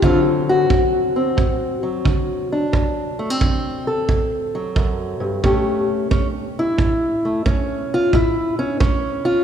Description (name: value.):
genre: acoustic country blues, solo or duo.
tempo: 89 BPM.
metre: 4/4.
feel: swing 67% on 8ths.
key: D mixolydian.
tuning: A4 = 440 Hz.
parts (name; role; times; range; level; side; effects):
fingerpicked steel-string acoustic guitar; melody; 0.0-9.4 s; D2 to A4; -18 LUFS; left 1 dB; none.
kick drum; drums; 0.0-9.0 s; none; -21 LUFS; right 2 dB; none.
room: wet church reverb, RT60 2.7 s.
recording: recorded in a church or concert hall.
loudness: -17 LUFS.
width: side -8 dB against mid.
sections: 0.0-9.4 A section.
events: none.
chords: 0.0 D7; 5.4 A7.